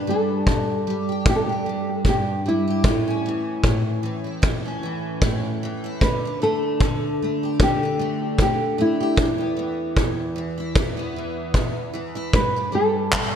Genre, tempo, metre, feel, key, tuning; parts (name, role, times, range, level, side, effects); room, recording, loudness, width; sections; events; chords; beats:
acoustic pop; 76 BPM; 4/4; swing 55% on 16ths; G major; A4 = 440 Hz
picked steel-string acoustic guitar; accompaniment; 0.0-13.4 s; E2 to G4; -25 LUFS; equal; double-tracked left and right
nylon-string guitar; melody; 0.1-13.4 s; E4 to B4; -24 LUFS; equal; ping-pong delay
loose indie drum kit; drums; 0.5-13.3 s; handclaps, kick drum; -21 LUFS; equal; gated reverb
moderate lush hall reverb, RT60 2.5 s; bright 1980s-style digital production; -20 LUFS; side -8 dB against mid
0.0-13.4 A section
0.0 G5; 2.8 A; 9.2 E5; 12.3 G5
0.46 1.26 2.05 | 2.84 3.63 4.42 5.22 | 6.01 6.80 7.59 8.38 | 9.18 9.97 10.76 11.55 | 12.34 13.14